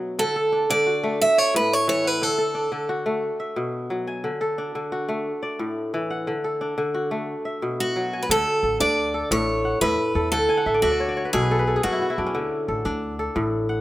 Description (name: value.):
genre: west african traditional, West African string and xylophone music.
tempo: 118 BPM (dotted quarters).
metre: 12/8.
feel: straight.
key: D lydian.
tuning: A4 = 439 Hz.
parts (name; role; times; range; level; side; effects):
kora; arpeggios; 0.0-13.8 s; A2 to G#5; -25 LUFS; left 1 dB; none.
picked steel-string acoustic guitar; melody; 0.2-2.9, 7.8-12.2 s; F#4 to E5; -21 LUFS; right 1 dB; none.
upright bass; bass; 8.3-13.8 s; A1 to F#2; -29 LUFS; equal; none.
room: light reverb, studio ambience.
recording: rough home demo mix.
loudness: -21 LUFS.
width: side -16 dB against mid.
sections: 0.0-8.3 A section; 8.3-13.8 B section.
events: kora fill 10.5-12.3.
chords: 0.2 D; 1.2 A5; 2.2 D; 3.2 B5; 4.2 D; 5.3 A5; 6.3 D; 7.3 B5; 8.3 D5; 9.3 A; 10.3 D; 11.3 B5; 12.3 D5.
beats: | 0.19 0.69 1.20 1.71 | 2.21 2.72 3.23 3.73 | 4.24 4.75 5.25 5.76 | 6.27 6.78 7.28 7.79 | 8.29 8.80 9.31 9.81 | 10.32 10.82 11.33 11.84 | 12.34 12.85 13.35.